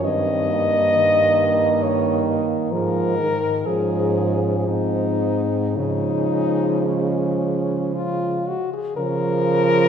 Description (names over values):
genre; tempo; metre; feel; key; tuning
classical, lyrical piece for horn quartet; 54-68 BPM; 3/4; rubato; Db major; A4 = 440 Hz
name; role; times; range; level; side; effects
warm French horn; melody; 0.0-9.9 s; Db4 to Eb5; -21 LUFS; left 3 dB; none
mellow French horn; second line; 0.0-8.6 s; Ab3 to Db4; -27 LUFS; right 6 dB; none
mellow French horn; accompaniment; 0.0-9.9 s; Eb3 to F3; -24 LUFS; right 3 dB; none
warm French horn; bass; 0.0-9.9 s; G2 to Db3; -25 LUFS; right 1 dB; none
room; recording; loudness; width
wet church reverb, RT60 3.0 s; heard from further back in the room; -18 LUFS; side -8 dB against mid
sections
0.0-9.0 A section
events
none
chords
0.0 Eb/G; 2.7 Ab5; 3.7 Db/Ab; 5.8 Db